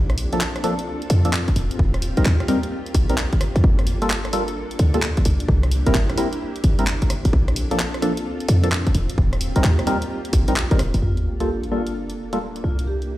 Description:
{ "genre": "UK garage, two-step garage", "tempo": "130 BPM", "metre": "4/4", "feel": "swing 65% on 16ths", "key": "G minor", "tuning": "A4 = 440 Hz", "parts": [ { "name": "soft string machine", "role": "sustained chords", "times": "0.0-13.2 s", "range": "Bb3 to A4", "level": "-30 LUFS", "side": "equal", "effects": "ensemble chorus, sidechain pumping" }, { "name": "short 808-style bass", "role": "bass", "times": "0.0-13.2 s", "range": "Eb1 to F2", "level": "-20 LUFS", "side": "equal", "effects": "none" }, { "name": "house drum kit", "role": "drums", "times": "0.1-13.1 s", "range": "handclaps, hi-hat, rim click", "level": "-27 LUFS", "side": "equal", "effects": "none" }, { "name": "percussive organ stab", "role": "stabs", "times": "0.3-12.4 s", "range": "F3 to Bb4", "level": "-24 LUFS", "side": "equal", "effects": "chorus, phaser, tape echo" }, { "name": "electronic kick drum", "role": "drums", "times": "1.5-10.8 s", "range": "none", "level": "-20 LUFS", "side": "equal", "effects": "none" }, { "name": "vibraphone with soft mallets", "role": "melody", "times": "11.0-13.1 s", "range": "F4 to G4", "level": "-32 LUFS", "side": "equal", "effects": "none" }, { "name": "sub drop", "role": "sound effects", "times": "11.0-12.9 s", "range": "none", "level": "-28 LUFS", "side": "equal", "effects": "none" } ], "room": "light reverb", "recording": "played on a big sound system in a bare room, large studio reverb", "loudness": "-18 LUFS", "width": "side -15 dB against mid", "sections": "0.0-11.0 A section; 11.0-13.2 B section", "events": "impact 11.0-12.9", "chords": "0.0 Bbmaj7; 1.6 Eb6; 3.6 Gm9; 5.3 C7; 7.3 Bbmaj7; 8.9 Eb6; 11.0 Gm9; 12.6 C7" }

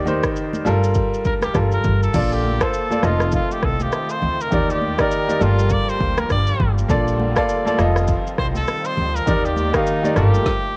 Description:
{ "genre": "afrobeats", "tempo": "101 BPM", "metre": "4/4", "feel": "swing 58% on 16ths", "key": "Bb major", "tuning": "A4 = 438 Hz", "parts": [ { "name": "clear baby grand piano", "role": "accompaniment", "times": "0.0-10.5 s", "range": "Eb3 to F5", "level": "-24 LUFS", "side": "equal", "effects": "none" }, { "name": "upright bass", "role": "bass", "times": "0.0-10.4 s", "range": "F1 to Eb2", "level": "-23 LUFS", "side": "equal", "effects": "none" }, { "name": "afro-pop drum kit", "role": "drums", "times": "0.1-10.6 s", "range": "crash cymbal, kick drum, rim click, shaker, snare drum, toms", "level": "-26 LUFS", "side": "equal", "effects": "cassette tape" }, { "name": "congas", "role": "percussion", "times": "0.1-10.3 s", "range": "none", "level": "-32 LUFS", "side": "equal", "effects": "none" }, { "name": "bright trumpet", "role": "melody", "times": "1.3-10.8 s", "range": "Eb4 to D5", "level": "-27 LUFS", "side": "equal", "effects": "tape echo" }, { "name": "lush unison pad", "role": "sustained chords", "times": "2.1-10.5 s", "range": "D3 to D5", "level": "-32 LUFS", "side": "equal", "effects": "chorus" } ], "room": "light reverb, studio reverb", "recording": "home recording on cassette", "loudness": "-19 LUFS", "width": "mono", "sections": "0.0-2.1 A section; 2.1-10.8 B section", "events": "stop 10.5-10.8", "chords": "0.0 Ebmaj7; 0.7 Gm9; 2.1 Bbmaj7; 3.0 F7; 4.5 Ebmaj7; 5.4 Gm9; 6.9 Bbmaj7; 7.8 F7; 9.3 Ebmaj7; 10.2 Gm9" }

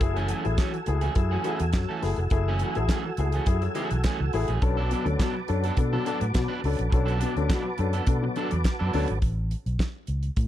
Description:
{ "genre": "disco", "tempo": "104 BPM", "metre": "4/4", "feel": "straight", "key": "F# minor", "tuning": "A4 = 440 Hz", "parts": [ { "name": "electric guitar at the edge of break-up", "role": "accompaniment", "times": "0.0-9.1 s", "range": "E3 to B4", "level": "-33 LUFS", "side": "right 6 dB", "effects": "none" }, { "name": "warm grand piano", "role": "accompaniment", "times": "0.0-9.1 s", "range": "B2 to A4", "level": "-31 LUFS", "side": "left 7 dB", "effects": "none" }, { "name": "tonewheel organ", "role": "sustained chords", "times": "0.0-9.2 s", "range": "F#4 to E6", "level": "-33 LUFS", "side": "right 1 dB", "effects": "chorus vibrato, slow rotary speaker" }, { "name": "fingered electric bass", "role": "bass", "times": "0.0-10.5 s", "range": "E#1 to B2", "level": "-26 LUFS", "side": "equal", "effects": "none" }, { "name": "damped 70s drum kit", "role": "drums", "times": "0.0-10.5 s", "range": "hi-hat, kick drum, snare drum", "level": "-26 LUFS", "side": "equal", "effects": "none" }, { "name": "group handclap", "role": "percussion", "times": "0.6-9.9 s", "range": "none", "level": "-44 LUFS", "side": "right 4 dB", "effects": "none" } ], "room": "little or no reverb", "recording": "dark, warm production", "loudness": "-23 LUFS", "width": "side -12 dB against mid", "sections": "0.0-9.2 A section; 9.2-10.5 B section", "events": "none", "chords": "0.0 F#m9; 4.6 Bm7; 9.2 A" }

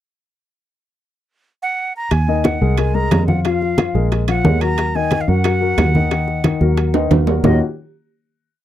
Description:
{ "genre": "Afro-Cuban jazz", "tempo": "180 BPM", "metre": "4/4", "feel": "straight", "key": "Eb minor", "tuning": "A4 = 440 Hz", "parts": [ { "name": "breathy bright concert flute", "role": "melody", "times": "1.6-7.6 s", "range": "Eb5 to Bb5", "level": "-23 LUFS", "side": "right 3 dB", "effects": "none" }, { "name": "fingered electric bass", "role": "bass", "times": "2.1-7.6 s", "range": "Bb1 to Gb2", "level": "-18 LUFS", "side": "right 1 dB", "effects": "none" }, { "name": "bongos", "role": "percussion", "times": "2.1-7.5 s", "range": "none", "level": "-22 LUFS", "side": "left 4 dB", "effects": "none" }, { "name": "congas", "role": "percussion", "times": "2.1-7.5 s", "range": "none", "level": "-20 LUFS", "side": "right 1 dB", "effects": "none" }, { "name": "timbales", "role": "percussion", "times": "2.1-7.5 s", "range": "none", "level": "-24 LUFS", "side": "right 12 dB", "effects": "none" }, { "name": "warm grand piano", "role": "accompaniment", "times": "2.3-7.6 s", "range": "Eb3 to F5", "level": "-20 LUFS", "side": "left 8 dB", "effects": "none" } ], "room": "light reverb", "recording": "dry, close 1970s-style studio recording", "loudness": "-14 LUFS", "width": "side -12 dB against mid", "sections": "0.8-2.1 pickup bar; 2.1-7.4 A section; 7.4-8.6 final chord", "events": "drum fill 6.9-7.4", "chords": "0.8 N.C.; 2.1 Ebm; 2.8 Ab13/C; 3.5 Fmadd11; 4.1 Bb5; 4.8 Ebm; 7.4 Ebm9" }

